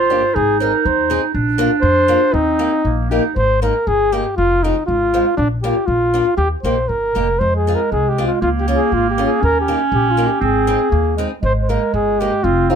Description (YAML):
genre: alpine folk, alpine dance band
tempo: 119 BPM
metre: 2/4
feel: rubato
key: Eb major, Ab major from 3.4 s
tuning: A4 = 440 Hz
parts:
  - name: mellow flugelhorn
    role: melody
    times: 0.0-12.8 s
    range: D4 to C5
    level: -17 LUFS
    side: left 1 dB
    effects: none
  - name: mellow clarinet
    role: second line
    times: 0.0-3.4, 7.4-12.8 s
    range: Ab3 to F4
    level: -19 LUFS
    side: right 6 dB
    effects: none
  - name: upright bass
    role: bass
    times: 0.0-12.8 s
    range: F1 to F2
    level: -20 LUFS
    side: equal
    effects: none
  - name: picked old ladder-braced acoustic guitar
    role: accompaniment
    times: 0.1-12.8 s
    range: Ab3 to Ab4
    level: -21 LUFS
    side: left 2 dB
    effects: none
room: moderate small room reverb, RT60 0.5 s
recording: none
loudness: -14 LUFS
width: side -7 dB against mid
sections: 0.0-3.4 A section; 3.4-11.4 B section; 11.4-12.8 B section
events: none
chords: 0.3 Ab; 1.3 Bb; 2.3 Eb; 3.4 Absus2; 4.4 Fm; 5.4 Bb; 6.4 Eb; 7.4 Fm; 8.4 Db6; 9.4 Eb7; 10.4 Ab; 11.4 Absus2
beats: | 0.35 0.84 | 1.33 1.82 | 2.33 2.84 | 3.35 3.87 | 4.38 4.88 | 5.37 5.87 | 6.38 6.89 | 7.40 7.91 | 8.42 8.92 | 9.42 9.92 | 10.41 10.92 | 11.43 11.94 | 12.44